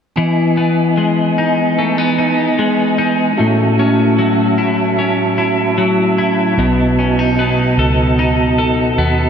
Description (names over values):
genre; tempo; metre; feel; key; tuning
dream pop; 75 BPM; 4/4; straight; E major; A4 = 445 Hz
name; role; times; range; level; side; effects
mellow tonewheel organ; sustained chords; 0.2-9.3 s; E3 to A5; -16 LUFS; right 3 dB; chorus vibrato, stopped rotary speaker
twelve-string electric guitar; arpeggios; 0.2-9.3 s; A2 to A4; -14 LUFS; left 2 dB; lush chorus, tape echo
vintage muted fingered electric bass; bass; 6.6-9.3 s; B1 to D#2; -18 LUFS; equal; none
room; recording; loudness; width
wet huge ambient reverb, RT60 8.2 s; dreamy mix soaked in reverb; -12 LUFS; side -7 dB against mid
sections
0.2-9.3 A section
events
none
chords
0.2 Emaj7; 3.4 A6; 6.6 B7